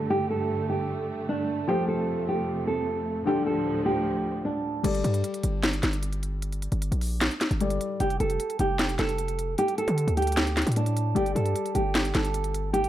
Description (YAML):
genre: hip hop, trap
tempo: 152 BPM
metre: 4/4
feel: half-time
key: unclear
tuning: A4 = 440 Hz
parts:
  - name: nylon-string guitar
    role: melody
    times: 0.0-4.8, 8.0-12.9 s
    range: D4 to A4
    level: -27 LUFS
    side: right 2 dB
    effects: low-pass filter, tape echo
  - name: warm concert grand piano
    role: accompaniment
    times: 0.0-8.0, 11.1-12.9 s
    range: D3 to D5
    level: -31 LUFS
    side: left 4 dB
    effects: low-pass filter
  - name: warm symphonic string section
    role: sustained chords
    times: 0.0-4.8 s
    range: D2 to A3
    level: -31 LUFS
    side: right 2 dB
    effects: none
  - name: hard-hitting 808-style bass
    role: bass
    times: 4.8-12.9 s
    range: F1 to D3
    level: -27 LUFS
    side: equal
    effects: none
  - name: trap drum kit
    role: drums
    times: 4.8-12.9 s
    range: crash cymbal, handclaps, hi-hat, snare drum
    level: -29 LUFS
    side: equal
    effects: none
room: light reverb, small room ambience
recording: none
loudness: -24 LUFS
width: side -12 dB against mid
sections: 0.0-4.8 A section; 4.8-12.9 B section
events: none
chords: 0.0 Gsus2; 1.7 F; 3.3 Dm; 4.8 Gsus2; 8.0 F; 9.6 D5; 11.2 Gsus2